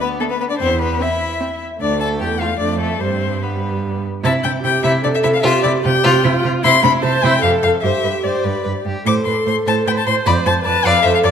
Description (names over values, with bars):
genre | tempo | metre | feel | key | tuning
quick classical-period movement for string quartet | 150 BPM | 3/4 | straight | C major | A4 = 440 Hz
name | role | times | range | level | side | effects
rich violin | melody | 0.0-11.3 s | A4 to D6 | -19 LUFS | left 7 dB | none
rich violin | second line | 0.0-11.3 s | A3 to D5 | -22 LUFS | left 1 dB | none
warm viola | accompaniment | 0.2-11.3 s | G3 to C5 | -21 LUFS | right 3 dB | none
rich cello | bass | 0.6-11.3 s | D2 to C3 | -20 LUFS | right 4 dB | none
room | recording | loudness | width
wet concert hall reverb, RT60 1.9 s | none | -14 LUFS | side -8 dB against mid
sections
0.0-4.2 A section; 4.2-11.3 B section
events
none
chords
0.0 Bm; 0.6 C/E; 1.8 D5; 2.6 Dm/F; 3.0 G; 4.2 C; 5.4 Cadd11; 6.6 C; 7.4 F; 7.8 Gsus4; 9.1 Am; 10.3 Dm/F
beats
0.21 | 0.60 1.01 1.41 | 1.81 2.20 2.60 | 3.01 3.42 3.83 | 4.24 4.64 5.04 | 5.44 5.85 6.25 | 6.64 7.03 7.43 | 7.83 8.24 8.65 | 9.05 9.46 9.86 | 10.25 10.65 11.04